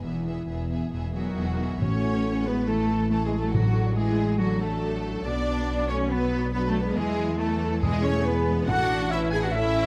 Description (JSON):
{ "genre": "cinematic, heroic adventure film score", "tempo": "140 BPM", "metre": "4/4", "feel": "straight", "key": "A major", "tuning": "A4 = 442 Hz", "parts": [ { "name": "rich symphonic violin section", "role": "melody", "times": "0.0-9.9 s", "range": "F#4 to G#5", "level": "-40 LUFS", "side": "equal", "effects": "none" }, { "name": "clear symphonic violin section", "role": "second line", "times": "0.0-9.9 s", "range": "F#4 to G#5", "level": "-41 LUFS", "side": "equal", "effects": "none" }, { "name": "warm studio viola section", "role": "accompaniment", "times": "0.0-9.9 s", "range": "D3 to E4", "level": "-35 LUFS", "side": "equal", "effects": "none" }, { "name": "concert harp", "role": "arpeggios", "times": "0.0-9.9 s", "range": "E2 to D6", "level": "-38 LUFS", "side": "equal", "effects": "none" }, { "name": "rich symphonic cello section", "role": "bass", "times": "0.0-9.9 s", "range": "E2 to G#4", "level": "-31 LUFS", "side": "equal", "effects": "none" }, { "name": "rich symphonic double bass section", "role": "bass", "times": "0.0-9.9 s", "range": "E1 to E2", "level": "-32 LUFS", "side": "equal", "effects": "none" }, { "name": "concert flute", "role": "second line", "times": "1.1-9.9 s", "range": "F#5 to G#6", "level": "-39 LUFS", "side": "equal", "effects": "none" }, { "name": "warm clarinet", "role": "second line", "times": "1.1-9.9 s", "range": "F#4 to G#5", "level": "-36 LUFS", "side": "equal", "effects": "none" }, { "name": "mellow French horn section", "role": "sustained chords", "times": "1.8-9.9 s", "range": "D4 to B4", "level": "-37 LUFS", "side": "equal", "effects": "none" }, { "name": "timpani", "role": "percussion", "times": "1.8-4.1, 7.8-9.3 s", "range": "E2 to A2", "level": "-32 LUFS", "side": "equal", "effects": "none" } ], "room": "moderate scoring stage reverb, RT60 1.7 s", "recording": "none", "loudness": "-25 LUFS", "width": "mono", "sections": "0.0-1.8 A section; 1.8-9.9 B section", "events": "none", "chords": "0.0 E; 1.8 Aadd9; 3.5 D/A; 5.3 Bm; 7.0 Esus4; 7.8 E; 8.7 A", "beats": "| 0.05 0.49 0.93 1.37 | 1.82 2.25 2.68 3.11 | 3.54 3.97 4.40 4.83 | 5.26 5.69 6.12 6.54 | 6.97 7.40 7.83 8.26 | 8.69 9.11 9.54" }